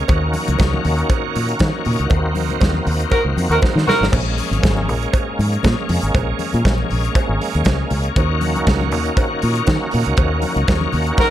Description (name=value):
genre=disco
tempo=119 BPM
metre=4/4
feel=straight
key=unclear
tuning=A4 = 440 Hz
part: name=bright tonewheel organ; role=sustained chords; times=0.0-11.3 s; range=Eb3 to Gb4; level=-22 LUFS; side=equal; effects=overdrive, chorus vibrato, slow rotary speaker
part: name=fingered electric bass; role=bass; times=0.1-11.1 s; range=Ab1 to Eb3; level=-19 LUFS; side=equal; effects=none
part: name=modern studio drum kit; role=drums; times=0.1-11.3 s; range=crash cymbal, hi-hat, kick drum, snare drum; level=-20 LUFS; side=equal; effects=none
part: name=congas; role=percussion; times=0.1-11.3 s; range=none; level=-30 LUFS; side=left 4 dB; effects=none
part: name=cowbell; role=percussion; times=0.1-11.3 s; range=none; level=-29 LUFS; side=right 8 dB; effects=none
part: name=mellow horn section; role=stabs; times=3.1-4.0, 11.2-11.3 s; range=Eb4 to Bb4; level=-17 LUFS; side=equal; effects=none
room=studio ambience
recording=none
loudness=-15 LUFS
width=side -12 dB against mid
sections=0.0-11.3 A section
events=band accent 2.1-4.1, 10.2-11.3; drum fill 3.6-4.1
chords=0.1 Ebm7; 4.1 Bbm7; 8.2 Ebm7